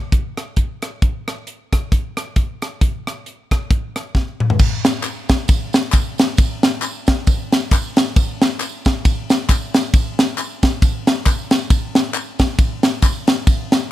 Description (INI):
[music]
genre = gospel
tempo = 135 BPM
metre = 4/4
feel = swing 56% on 8ths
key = none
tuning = none
[part]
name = crisp fusion drum kit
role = drums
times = 0.1-13.8 s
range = crash cymbal, hi-hat, kick drum, ride cymbal, rim click, snare drum, toms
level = -15 LUFS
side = equal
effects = none
[part]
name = tambourine and handclaps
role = percussion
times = 4.6-13.8 s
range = none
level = -28 LUFS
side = left 2 dB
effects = none
[sound]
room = little or no reverb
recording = none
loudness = -15 LUFS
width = side -14 dB against mid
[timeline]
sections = 0.0-4.6 A section; 4.6-13.9 B section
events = drum fill 4.2-4.6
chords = none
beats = 0.12 0.57 | 1.02 1.47 1.92 2.37 | 2.82 3.27 3.71 4.16 | 4.61 5.05 5.50 5.94 | 6.39 6.83 7.27 7.72 | 8.16 8.60 9.05 9.49 | 9.93 10.38 10.82 11.26 | 11.71 12.15 12.59 13.03 | 13.47